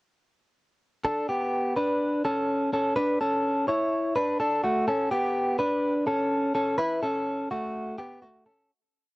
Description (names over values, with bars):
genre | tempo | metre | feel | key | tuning
indie pop | 126 BPM | 4/4 | straight | unclear | A4 = 440 Hz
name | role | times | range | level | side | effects
direct-recorded clean electric guitar | solo | 1.0-8.7 s | A3 to C#5 | -24 LUFS | equal | cassette tape
room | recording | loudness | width
moderate booth ambience, RT60 0.2 s | home recording on cassette | -24 LUFS | side -21 dB against mid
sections
1.0-8.7 bridge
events
fade-out 6.8-8.7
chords
1.0 Gadd9; 3.0 D; 4.9 A